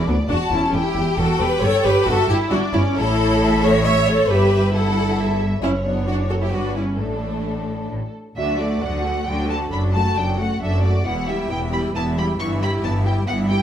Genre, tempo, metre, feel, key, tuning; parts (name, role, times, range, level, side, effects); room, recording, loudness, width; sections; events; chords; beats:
quick classical-period movement for string orchestra; 135 BPM; 3/4; straight; D major; A4 = 440 Hz
rich studio violin section; melody; 0.0-13.6 s; A4 to C#6; -27 LUFS; left 1 dB
clear studio violin section; second line; 0.0-13.6 s; D4 to G5; -24 LUFS; left 2 dB
clear studio double bass section; bass; 0.0-13.6 s; E1 to D2; -24 LUFS; right 1 dB
rich studio cello section; bass; 0.0-13.6 s; D2 to D3; -24 LUFS; equal
rich studio viola section; accompaniment; 0.1-13.6 s; E3 to C#5; -23 LUFS; right 1 dB
wet stone room reverb, RT60 0.9 s; dark, warm production; -17 LUFS; side -9 dB against mid
0.0-8.4 A section; 8.4-13.6 A section
0.3 Em; 1.6 Em/G; 3.0 A; 4.3 A5/G; 5.6 Bmadd9/F#; 6.5 Em/G (rootless); 7.0 D5/A; 7.9 N.C.; 8.4 D; 9.7 D/F#; 11.1 Em; 12.4 Em/G
| 0.30 0.74 1.19 | 1.63 2.07 2.51 | 2.96 3.41 3.85 | 4.29 4.74 5.18 | 5.63 6.08 6.53 | 6.99 7.45 7.91 | 8.37 8.82 9.27 | 9.72 10.17 10.62 | 11.06 11.50 11.94 | 12.39 12.84 13.28